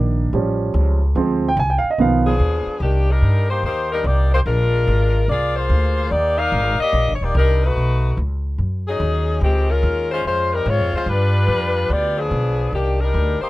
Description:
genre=jazz, big band swing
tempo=145 BPM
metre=4/4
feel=swing 66% on 8ths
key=C minor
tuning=A4 = 443 Hz
part: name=warm concert grand piano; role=accompaniment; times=0.0-2.6 s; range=Eb3 to Ab5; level=-18 LUFS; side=right 4 dB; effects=none
part: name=upright bass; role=bass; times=0.0-13.4 s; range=Eb1 to Ab2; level=-18 LUFS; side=equal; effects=none
part: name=bright saxophone section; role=melody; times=2.3-13.5 s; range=Eb3 to F5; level=-20 LUFS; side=left 2 dB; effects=none
room=light reverb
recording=rough home demo mix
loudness=-16 LUFS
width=side -18 dB against mid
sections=0.0-2.8 A section; 2.8-13.5 B section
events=grand piano solo 0.0-2.8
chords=0.3 A7b13; 1.2 Dm7b5; 2.0 Bdim7; 2.8 Cm9; 4.5 Bb7; 6.1 Ebmaj7; 7.8 B9; 9.4 Dbmaj7; 11.1 G7; 12.7 Cm9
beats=0.33 0.74 | 1.16 1.57 1.98 2.39 | 2.81 3.22 3.63 4.04 | 4.46 4.87 5.28 5.70 | 6.11 6.52 6.93 7.35 | 7.76 8.18 8.59 9.00 | 9.42 9.83 10.24 10.66 | 11.07 11.49 11.90 12.31 | 12.73 13.14

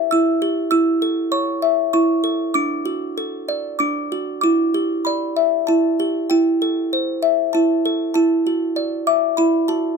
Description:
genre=children's music, lullaby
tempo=97 BPM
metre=3/4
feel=rubato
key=unclear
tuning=A4 = 440 Hz
part: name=music box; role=solo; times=0.0-10.0 s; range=D4 to E6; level=-17 LUFS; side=equal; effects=none
room=little or no reverb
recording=close, detailed microphones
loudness=-17 LUFS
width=side -5 dB against mid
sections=0.0-10.0 A section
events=none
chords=0.0 Em; 0.7 A; 2.6 D; 4.4 Em7; 6.3 Am/E; 8.2 Dadd9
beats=0.11 | 0.72 1.33 1.94 | 2.56 3.18 3.81 | 4.44 5.07 5.69 | 6.31 6.93 7.55 | 8.15 8.76 9.38

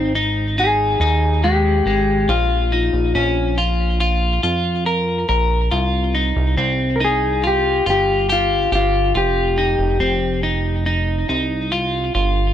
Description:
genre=dream pop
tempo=70 BPM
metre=4/4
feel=straight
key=unclear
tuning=A4 = 440 Hz
part: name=mellow electric guitar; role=melody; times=0.0-10.4 s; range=Eb4 to Bb4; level=-19 LUFS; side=left 3 dB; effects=lush chorus, tape echo
part: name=electric guitar at the edge of break-up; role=arpeggios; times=0.0-12.5 s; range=Ab3 to Bb4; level=-20 LUFS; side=equal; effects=wide subtle chorus, tape echo
part: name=chorused synth bass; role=bass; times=0.0-12.5 s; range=F1 to F2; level=-20 LUFS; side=right 1 dB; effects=none
room=light reverb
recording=dry, gritty hardware recording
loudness=-16 LUFS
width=side -10 dB against mid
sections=0.0-12.5 A section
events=none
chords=0.0 Ab5; 2.3 Bbm; 5.7 Csus4; 9.1 Fsus2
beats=0.57 1.43 | 2.29 3.15 4.00 4.86 | 5.72 6.58 7.43 8.29 | 9.15 10.00 10.86 11.72

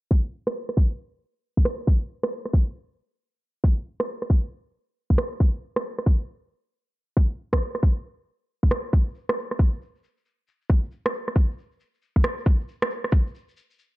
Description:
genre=UK garage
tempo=136 BPM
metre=4/4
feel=swing 64% on 16ths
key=none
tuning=none
part: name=electronic kick drum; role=drums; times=0.1-13.2 s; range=none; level=-19 LUFS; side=equal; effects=overdrive, studio ambience
part: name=electronic rim click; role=drums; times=0.5-13.1 s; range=none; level=-26 LUFS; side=right 1 dB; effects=overdrive, studio ambience
part: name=egg shaker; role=percussion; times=8.9-13.9 s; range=none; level=-64 LUFS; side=left 4 dB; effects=none
room=small room ambience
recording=dark, warm production, low-pass filter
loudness=-22 LUFS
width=side -19 dB against mid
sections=0.0-14.0 A section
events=filter sweep 0.0-14.0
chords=none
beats=| 0.11 0.55 0.99 1.43 | 1.87 2.31 2.75 3.20 | 3.64 4.08 4.52 4.96 | 5.40 5.84 6.29 6.73 | 7.17 7.61 8.05 8.49 | 8.93 9.37 9.81 10.26 | 10.70 11.14 11.58 12.02 | 12.46 12.90 13.34 13.79

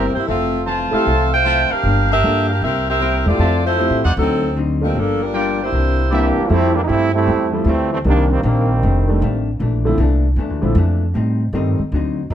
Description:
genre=jazz, big band swing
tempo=155 BPM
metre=4/4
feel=swing 66% on 8ths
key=F major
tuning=A4 = 440 Hz
part: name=clear saxophone section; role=melody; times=0.0-6.3 s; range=F3 to G5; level=-18 LUFS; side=equal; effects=none
part: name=vintage hollow-body jazz guitar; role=accompaniment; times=0.0-12.3 s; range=F2 to G4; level=-24 LUFS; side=left 4 dB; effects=none
part: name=warm trumpet section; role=stabs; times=0.0-6.3 s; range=Eb4 to A5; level=-24 LUFS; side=equal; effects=none
part: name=upright bass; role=bass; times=0.0-12.3 s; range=F1 to A2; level=-18 LUFS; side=equal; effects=none
part: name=warm grand piano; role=accompaniment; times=0.9-11.8 s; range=D3 to A4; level=-22 LUFS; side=right 1 dB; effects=none
part: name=brilliant trombone section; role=second line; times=6.1-9.4, 12.3 s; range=Eb3 to G4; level=-18 LUFS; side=right 3 dB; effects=none
room=moderate large studio reverb, RT60 1.2 s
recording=none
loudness=-15 LUFS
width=side -10 dB against mid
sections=0.0-6.5 A section; 6.5-12.3 B section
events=trombone section solo 6.5-12.3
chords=0.3 Fmaj7; 1.8 Gm7; 2.6 C7; 3.4 Fmaj7; 4.2 D7b9; 4.9 Gm7; 5.7 C9; 6.5 Fmaj9; 8.0 Cm9; 8.8 F13; 9.6 Bbmaj9#11; 11.1 Am7b5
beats=| 0.28 0.67 1.06 1.45 | 1.84 2.23 2.62 3.00 | 3.39 3.78 4.17 4.56 | 4.95 5.33 5.72 6.11 | 6.50 6.89 7.27 7.66 | 8.05 8.44 8.82 9.21 | 9.60 9.99 10.37 10.76 | 11.15 11.54 11.92 12.31

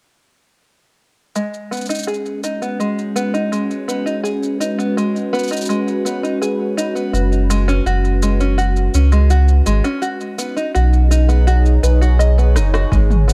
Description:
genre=folktronica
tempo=83 BPM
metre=4/4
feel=straight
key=G# minor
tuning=A4 = 440 Hz
part: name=warm analog pad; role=sustained chords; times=1.4-13.3 s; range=G#3 to C#5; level=-25 LUFS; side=equal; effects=chorus
part: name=open-back banjo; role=arpeggios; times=1.4-13.3 s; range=G#3 to D#5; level=-24 LUFS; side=equal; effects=low-pass filter, digital delay
part: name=organic electronic drum kit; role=drums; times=1.4-13.3 s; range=rim click, shaker, toms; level=-29 LUFS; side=equal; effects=overdrive
part: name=warm sub bass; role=bass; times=7.1-13.3 s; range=F#1 to C#2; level=-15 LUFS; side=equal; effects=tube saturation
part: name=electronic kick drum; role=drums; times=12.9-13.1 s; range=none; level=-20 LUFS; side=equal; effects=overdrive
room=little or no reverb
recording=dark, warm production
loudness=-17 LUFS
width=mono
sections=1.4-12.9 A section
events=filter sweep on analog synth pad 1.4-12.9; drum fill 12.6-12.9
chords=1.4 G#m; 7.1 F#sus2; 10.0 B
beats=| 1.35 2.07 2.80 3.52 | 4.24 4.96 5.69 6.41 | 7.13 7.86 8.58 9.30 | 10.03 10.75 11.47 12.19 | 12.92

